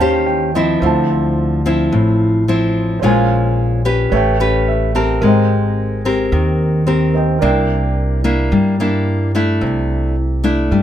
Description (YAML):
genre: bossa nova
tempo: 109 BPM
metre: 4/4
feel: straight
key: unclear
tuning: A4 = 440 Hz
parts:
  - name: nylon-string guitar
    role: accompaniment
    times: 0.0-10.8 s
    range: A2 to C5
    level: -16 LUFS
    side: left 2 dB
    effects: none
  - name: warm concert grand piano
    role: accompaniment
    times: 0.0-9.6 s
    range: F4 to A5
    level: -21 LUFS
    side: right 5 dB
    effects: none
  - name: upright bass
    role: bass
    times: 0.0-10.8 s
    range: Ab1 to G2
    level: -18 LUFS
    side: right 1 dB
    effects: none
room: little or no reverb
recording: close, detailed microphones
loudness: -13 LUFS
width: side -10 dB against mid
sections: 0.0-9.6 A section; 9.6-10.8 B section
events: grand piano fill 0.0-0.8, 4.4-5.2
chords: 0.0 Eb13; 0.8 Dm9; 3.0 Bbm7; 4.1 A9; 5.2 Abmaj9; 7.4 C9; 9.6 C69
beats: 0.27 | 0.82 1.37 1.92 2.47 | 3.02 3.57 4.12 4.67 | 5.22 5.77 6.32 6.87 | 7.42 7.97 8.52 9.07 | 9.62 10.17 10.72